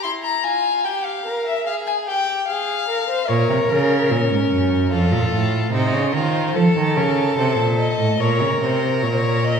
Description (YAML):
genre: classical, baroque-style fugue for string quartet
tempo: 73 BPM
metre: 4/4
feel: straight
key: Bb minor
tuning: A4 = 440 Hz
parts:
  - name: rich violin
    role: melody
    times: 0.0-9.6 s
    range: A4 to C6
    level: -22 LUFS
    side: left 6 dB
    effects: none
  - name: warm violin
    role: second line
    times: 0.0-9.6 s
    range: Db4 to C5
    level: -23 LUFS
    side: equal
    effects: none
  - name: rich cello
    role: bass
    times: 3.3-9.6 s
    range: F2 to F3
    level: -19 LUFS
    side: right 2 dB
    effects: none
room: wet scoring stage reverb, RT60 1.7 s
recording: heard from further back in the room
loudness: -17 LUFS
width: side -6 dB against mid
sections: 0.0-9.6 A section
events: none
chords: 0.0 C7/E (rootless); 1.7 Fm; 3.3 Bbm; 4.9 F; 6.6 F7 (rootless); 8.2 Bbm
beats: | 0.04 0.86 1.67 2.48 | 3.29 4.11 4.92 5.73 | 6.55 7.38 8.20 9.03